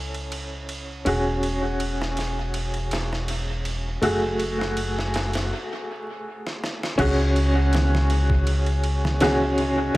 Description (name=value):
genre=trip hop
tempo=81 BPM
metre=4/4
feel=swing 54% on 16ths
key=unclear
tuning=A4 = 440 Hz
part: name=warm upright piano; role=accompaniment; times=0.0-10.0 s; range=A3 to A4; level=-25 LUFS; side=equal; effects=tremolo, vintage 12-bit sampler grit, tape echo
part: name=upright bass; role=bass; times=0.0-9.9 s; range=E1 to C#2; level=-24 LUFS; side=equal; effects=none
part: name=trip hop sampler-style drum kit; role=drums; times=0.1-10.0 s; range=crash cymbal, kick drum, ride cymbal, snare drum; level=-30 LUFS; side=equal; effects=high-pass filter on cymbals, high-pass filter on snare, high-pass filter on hats, high-pass filter on kick, dub echo
room=moderate spring reverb, RT60 2.2 s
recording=echo-heavy mix, vinyl crackle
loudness=-21 LUFS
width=side -18 dB against mid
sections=0.0-7.0 A section; 7.0-10.0 B section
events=break 5.5-7.0; drum fill 6.4-7.0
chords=0.0 A/C#; 1.1 E6; 4.0 F#madd9; 7.0 C#sus4